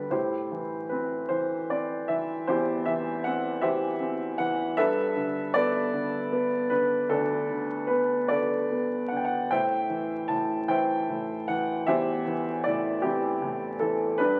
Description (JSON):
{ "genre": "classical, lyrical solo piano", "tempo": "51 BPM (dotted quarters)", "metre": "6/8", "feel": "rubato", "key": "unclear", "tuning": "A4 = 440 Hz", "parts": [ { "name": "warm baby grand piano", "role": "solo", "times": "0.0-14.4 s", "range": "D2 to B5", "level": "-27 LUFS", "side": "equal", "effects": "none" } ], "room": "wet recital hall reverb, RT60 1.3 s", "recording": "very old 78 rpm record, vinyl crackle", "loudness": "-28 LUFS", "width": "mono", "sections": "0.1-14.4 A section", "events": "none", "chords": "0.1 Am7; 4.8 Gadd9; 9.5 Am7", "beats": "| 0.11 1.30 | 2.47 3.63 | 4.77 5.92 | 7.10 8.30 | 9.50 10.69 | 11.88 13.04 | 14.19" }